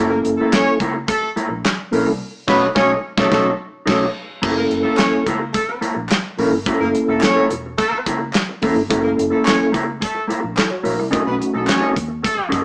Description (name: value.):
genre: funk.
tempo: 108 BPM.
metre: 4/4.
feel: straight.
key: unclear.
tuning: A4 = 439 Hz.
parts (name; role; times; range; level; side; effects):
mellow electric guitar; accompaniment; 0.0-12.6 s; A#3 to C#5; -21 LUFS; equal; none.
mellow tonewheel organ; stabs; 0.0-12.0 s; A3 to C#5; -18 LUFS; equal; chorus vibrato, stopped rotary speaker.
vintage muted fingered electric bass; bass; 0.0-12.6 s; E1 to E2; -30 LUFS; equal; none.
warm horn section; second line; 0.1-12.5 s; A3 to C#5; -21 LUFS; equal; none.
damped 70s drum kit; drums; 0.2-12.6 s; crash cymbal, handclaps, hi-hat, kick drum, snare drum; -20 LUFS; equal; none.
group handclap; percussion; 5.0-11.8 s; none; -29 LUFS; equal; none.
room: moderate studio reverb, RT60 0.7 s.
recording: band playing live in one room, small speaker sound.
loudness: -15 LUFS.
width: side -38 dB against mid.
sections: 0.0-4.4 A section; 4.4-12.6 B section.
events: band accent 2.2-4.4; silent gap 3.9-4.4.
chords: 0.0 F#7#9; 2.2 B9; 4.4 F#7#9; 11.1 B9.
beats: 0.52 1.08 1.64 | 2.20 2.76 3.31 3.87 | 4.43 4.99 5.55 6.11 | 6.67 7.22 7.78 8.34 | 8.90 9.46 10.01 10.57 | 11.13 11.69 12.25.